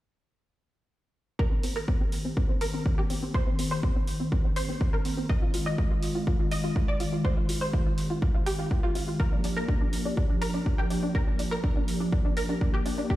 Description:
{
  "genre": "progressive house",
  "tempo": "123 BPM",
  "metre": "4/4",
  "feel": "straight",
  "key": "C minor",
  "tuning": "A4 = 440 Hz",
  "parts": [
    { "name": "warm analog pad", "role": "sustained chords", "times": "1.4-13.2 s", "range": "Eb3 to G4", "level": "-32 LUFS", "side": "equal", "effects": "chorus, tremolo, sidechain pumping" },
    { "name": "analog pluck", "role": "arpeggios", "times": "1.4-13.2 s", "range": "C4 to Eb5", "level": "-33 LUFS", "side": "equal", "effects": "ensemble chorus, sidechain pumping, dub echo" },
    { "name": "electronic kick drum", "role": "drums", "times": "1.4-13.2 s", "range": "none", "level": "-26 LUFS", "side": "equal", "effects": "overdrive" },
    { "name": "electronic hi-hat", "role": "drums", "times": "1.6-13.0 s", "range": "none", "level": "-40 LUFS", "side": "right 1 dB", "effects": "overdrive" }
  ],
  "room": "light reverb",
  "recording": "played on a big sound system in a bare room, stone room reverb",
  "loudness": "-25 LUFS",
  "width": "side -15 dB against mid",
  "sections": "1.4-13.2 A section",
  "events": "filter sweep on analog synth pad 1.4-13.2",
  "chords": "1.4 Cm7; 5.3 Fm7; 9.2 Gm7"
}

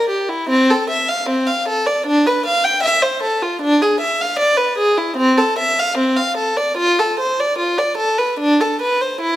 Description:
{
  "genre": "classical, baroque-style suite movement for unaccompanied violin",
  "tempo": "76 BPM",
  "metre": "4/4",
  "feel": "rubato",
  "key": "A minor",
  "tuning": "A4 = 440 Hz",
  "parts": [
    { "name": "warm violin", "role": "solo", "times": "0.0-9.4 s", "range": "C4 to G5", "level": "-15 LUFS", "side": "equal", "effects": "none" }
  ],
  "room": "moderate recital hall reverb, RT60 1.7 s",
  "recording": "close, detailed microphones",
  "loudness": "-14 LUFS",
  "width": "side -13 dB against mid",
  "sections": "0.0-9.4 A section",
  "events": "none",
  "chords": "none"
}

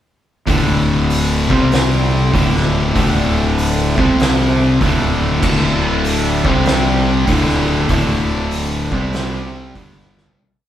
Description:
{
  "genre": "stoner and doom metal",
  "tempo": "97 BPM",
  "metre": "4/4",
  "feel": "swing 66% on 8ths",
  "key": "unclear",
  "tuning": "A4 = 439 Hz",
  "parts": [
    { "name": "overtone-sweeping drone", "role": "sustained chords", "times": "1.7-10.4 s", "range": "D4 to E5", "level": "-30 LUFS", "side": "equal", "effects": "none" },
    { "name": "distorted electric guitar", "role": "riff", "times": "0.5-10.4 s", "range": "D2 to C4", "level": "-21 LUFS", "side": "right 1 dB", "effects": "overdrive" },
    { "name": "fuzz guitar", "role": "riff", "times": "0.5-10.4 s", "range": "D2 to C4", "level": "-22 LUFS", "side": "right 4 dB", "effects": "distortion" },
    { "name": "thick fuzz guitar", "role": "riff", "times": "0.5-10.4 s", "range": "D2 to C4", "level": "-19 LUFS", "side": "left 6 dB", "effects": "distortion" },
    { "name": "fuzz fingered electric bass", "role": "bass", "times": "0.5-10.3 s", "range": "D1 to C2", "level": "-20 LUFS", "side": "equal", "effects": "overdrive" },
    { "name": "oversized low-tuned drum kit", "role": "drums", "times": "0.5-10.4 s", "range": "crash cymbal, hi-hat, kick drum, snare drum, toms", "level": "-20 LUFS", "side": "right 1 dB", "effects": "none" }
  ],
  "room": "light reverb",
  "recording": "band playing live in one room",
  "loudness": "-13 LUFS",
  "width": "side -11 dB against mid",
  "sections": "0.5-10.4 riff",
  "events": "fade-out 7.9-10.4; drum fill 10.1-10.4",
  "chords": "0.5 D5; 1.4 C5; 2.3 D5; 3.9 C5; 4.8 D5; 6.4 C5; 7.3 D5; 8.8 C5; 9.8 G5"
}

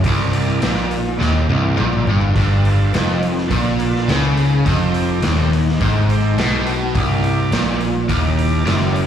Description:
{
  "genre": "blues rock power trio and southern rock",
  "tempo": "104 BPM",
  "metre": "4/4",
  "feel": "straight",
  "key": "unclear",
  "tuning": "A4 = 445 Hz",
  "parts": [
    { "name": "overdriven tonewheel organ", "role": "sustained chords", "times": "0.0-9.0 s", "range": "Eb4 to D5", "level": "-27 LUFS", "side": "right 5 dB", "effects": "slow rotary speaker" },
    { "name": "crunchy overdriven guitar", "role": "riff", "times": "0.0-9.1 s", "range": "C2 to Db3", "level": "-18 LUFS", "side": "equal", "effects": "none" },
    { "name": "vintage muted picked electric bass", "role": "bass", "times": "0.0-9.1 s", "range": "C1 to Db2", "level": "-19 LUFS", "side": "equal", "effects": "none" },
    { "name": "raw garage drum kit", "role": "drums", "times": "0.0-9.1 s", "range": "hi-hat, kick drum, snare drum, toms", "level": "-23 LUFS", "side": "equal", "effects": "none" }
  ],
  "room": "small room ambience",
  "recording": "live gig heard through the venue's PA, club reverb",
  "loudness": "-15 LUFS",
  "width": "side -9 dB against mid",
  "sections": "0.0-9.1 A section",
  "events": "drum fill 1.2-2.4",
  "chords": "0.0 C7; 2.4 G7; 4.7 F7; 7.0 C7"
}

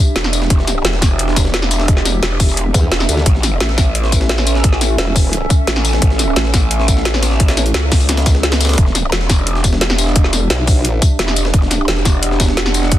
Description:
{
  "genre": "dark technical drum and bass",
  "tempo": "174 BPM",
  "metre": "4/4",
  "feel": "straight",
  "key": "E dorian",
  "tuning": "A4 = 442 Hz",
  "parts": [
    { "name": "dark analog pad", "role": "sustained chords", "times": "0.0-13.0 s", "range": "C#4 to F#5", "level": "-22 LUFS", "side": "right 2 dB", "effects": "chorus, phaser, sidechain pumping" },
    { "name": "growl bass", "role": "bass", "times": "0.2-13.0 s", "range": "E1 to C#2", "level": "-17 LUFS", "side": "equal", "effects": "chorus, tube saturation, sidechain pumping" },
    { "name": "breakbeat sampler-style drum kit", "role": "drums", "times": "0.2-13.0 s", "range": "hi-hat, snare drum", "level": "-26 LUFS", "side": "equal", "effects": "none" },
    { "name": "drum and bass drum kit", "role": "drums", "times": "0.2-13.0 s", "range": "hi-hat, snare drum, tambourine", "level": "-18 LUFS", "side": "left 1 dB", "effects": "none" },
    { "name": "electronic kick drum", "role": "drums", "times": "0.5-13.0 s", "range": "none", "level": "-13 LUFS", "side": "equal", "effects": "none" },
    { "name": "formant-sweep wobble bass", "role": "bass", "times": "2.7-5.5, 10.5-11.0 s", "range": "E1 to E2", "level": "-17 LUFS", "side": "equal", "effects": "chorus, tube saturation" }
  ],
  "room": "light reverb",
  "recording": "dense, heavily limited modern master",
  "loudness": "-12 LUFS",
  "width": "side -13 dB against mid",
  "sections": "0.0-13.0 A section",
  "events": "none",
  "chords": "0.0 Em7; 3.3 A; 8.8 Em7"
}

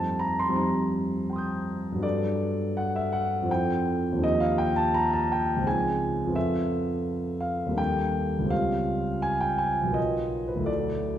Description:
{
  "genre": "classical, impressionist solo piano",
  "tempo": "83 BPM",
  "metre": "3/4",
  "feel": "rubato",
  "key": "unclear",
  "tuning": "A4 = 440 Hz",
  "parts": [
    { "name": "warm concert grand piano", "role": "solo", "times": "0.0-11.2 s", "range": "B1 to G6", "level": "-24 LUFS", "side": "equal", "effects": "none" }
  ],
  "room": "wet recital hall reverb, RT60 1.4 s",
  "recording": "recorded in a church or concert hall",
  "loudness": "-24 LUFS",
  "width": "side -10 dB against mid",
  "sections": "0.0-11.2 A section",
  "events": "none",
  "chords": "0.0 F9sus4; 2.0 Gmaj9; 3.5 Fmaj9; 4.2 D#maj9; 5.7 C#maj9; 6.4 Fmaj7#11; 7.8 D#maj7#11; 8.5 C#maj7#11; 10.0 Bmaj7#11; 10.7 Dadd9"
}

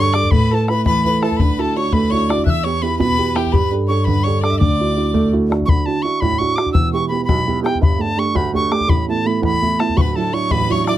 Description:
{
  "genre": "celtic folk, Celtic jig",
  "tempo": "112 BPM (dotted quarters)",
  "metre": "6/8",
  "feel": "straight",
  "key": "D major",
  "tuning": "A4 = 442 Hz",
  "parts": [
    { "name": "bright wooden whistle", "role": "melody", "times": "0.0-10.9 s", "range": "G5 to F#6", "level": "-21 LUFS", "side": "equal", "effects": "none" },
    { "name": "clear fiddle", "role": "second line", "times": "0.0-5.3, 10.0-11.0 s", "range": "G4 to E5", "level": "-25 LUFS", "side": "left 7 dB", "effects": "none" },
    { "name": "dark upright piano", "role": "accompaniment", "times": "0.0-11.0 s", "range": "D1 to B4", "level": "-19 LUFS", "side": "right 4 dB", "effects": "none" },
    { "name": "upright bass", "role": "bass", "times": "0.0-5.7 s", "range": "D2 to A2", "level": "-20 LUFS", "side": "equal", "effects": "none" },
    { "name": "bodhran", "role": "percussion", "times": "0.1-11.0 s", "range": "none", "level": "-19 LUFS", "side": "left 2 dB", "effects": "none" }
  ],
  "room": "moderate studio ambience, RT60 0.5 s",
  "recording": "close, detailed microphones",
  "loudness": "-14 LUFS",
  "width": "side -13 dB against mid",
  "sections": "0.0-5.7 A section; 5.7-11.0 A section",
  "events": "none",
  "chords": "0.3 Asus2; 1.4 Dadd9; 2.5 Em; 3.5 Gsus2; 4.6 Dadd9; 6.7 Em; 7.8 Gsus2; 8.9 Asus2; 10.0 Dadd9"
}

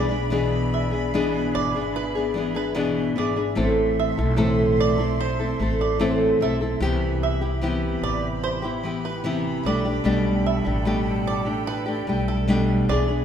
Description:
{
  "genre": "acoustic pop",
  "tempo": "74 BPM",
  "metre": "4/4",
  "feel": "straight",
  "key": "G major",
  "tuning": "A4 = 440 Hz",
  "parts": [
    { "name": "nylon-string guitar", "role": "accompaniment", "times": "0.0-13.2 s", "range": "A2 to A4", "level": "-22 LUFS", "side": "left 1 dB", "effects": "none" },
    { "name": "breathy bright flute section", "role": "sustained chords", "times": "0.0-13.2 s", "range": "G4 to C6", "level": "-32 LUFS", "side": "equal", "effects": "none" },
    { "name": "bluegrass banjo", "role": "arpeggios", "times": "0.0-13.1 s", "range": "A4 to E5", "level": "-30 LUFS", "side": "right 6 dB", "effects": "none" },
    { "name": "upright bass", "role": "bass", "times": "0.0-13.2 s", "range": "G#1 to C2", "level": "-27 LUFS", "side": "equal", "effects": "none" }
  ],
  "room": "wet recital hall reverb, RT60 1.5 s",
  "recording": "recorded in a church or concert hall",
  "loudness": "-20 LUFS",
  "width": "side -8 dB against mid",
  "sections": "0.0-13.2 A section",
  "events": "none",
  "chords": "0.0 E7; 3.6 Am; 6.8 Cmaj7; 9.7 Gadd9"
}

